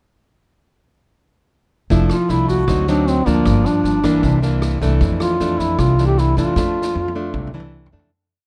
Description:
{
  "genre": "bossa nova",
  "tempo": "155 BPM",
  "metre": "4/4",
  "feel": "straight",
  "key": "F major",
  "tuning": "A4 = 440 Hz",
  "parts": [
    { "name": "nylon-string guitar", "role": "accompaniment", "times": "1.9-8.1 s", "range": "F2 to E4", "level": "-22 LUFS", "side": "equal", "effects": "none" },
    { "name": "upright bass", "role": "bass", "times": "1.9-8.1 s", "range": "F1 to F2", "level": "-22 LUFS", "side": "equal", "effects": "none" },
    { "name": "swinging big-band drum kit", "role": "drums", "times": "1.9-8.1 s", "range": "kick drum, rim click, snare drum, toms", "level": "-29 LUFS", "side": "equal", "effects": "none" },
    { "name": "mellow duduk", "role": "melody", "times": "2.1-7.7 s", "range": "Bb3 to G4", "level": "-22 LUFS", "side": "equal", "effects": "none" }
  ],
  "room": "light reverb",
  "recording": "dark, warm production",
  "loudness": "-17 LUFS",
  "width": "mono",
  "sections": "1.9-8.1 A section",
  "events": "fade-out 6.6-8.1; drum fill 6.6-8.1",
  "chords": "1.9 F6; 2.7 D7b9; 3.5 Gm7; 4.2 C9; 5.0 F6"
}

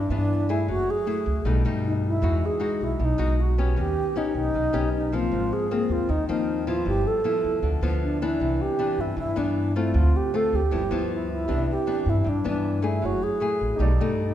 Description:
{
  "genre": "bossa nova",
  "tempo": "156 BPM",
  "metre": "4/4",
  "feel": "straight",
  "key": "unclear",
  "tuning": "A4 = 439 Hz",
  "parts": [
    { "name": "mellow alto flute", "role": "melody", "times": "0.0-14.3 s", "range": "D4 to A4", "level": "-26 LUFS", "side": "right 1 dB", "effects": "none" },
    { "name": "nylon-string guitar", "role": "accompaniment", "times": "0.0-14.3 s", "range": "G2 to Ab4", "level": "-28 LUFS", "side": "left 4 dB", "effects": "none" },
    { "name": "upright bass", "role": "bass", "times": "0.0-14.3 s", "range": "F#1 to G2", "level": "-26 LUFS", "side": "equal", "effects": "none" },
    { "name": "dark baby grand piano", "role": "accompaniment", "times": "11.4-14.3 s", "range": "D#4 to D5", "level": "-35 LUFS", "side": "right 4 dB", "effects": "none" }
  ],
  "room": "moderate concert hall reverb, RT60 1.8 s",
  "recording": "recorded in a church or concert hall",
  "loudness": "-22 LUFS",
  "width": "side -11 dB against mid",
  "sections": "0.0-11.5 A section; 11.5-14.3 A section",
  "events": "none",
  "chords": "0.0 Cmaj9 (rootless); 0.7 F#m9; 1.5 Baug7; 2.2 Emaj9; 3.8 Eb7b13; 5.3 Ab69; 6.9 G13; 8.4 Cmaj9; 9.9 Dm7; 10.7 G6; 11.5 Cmaj9; 13.0 F#m9; 13.8 B7alt"
}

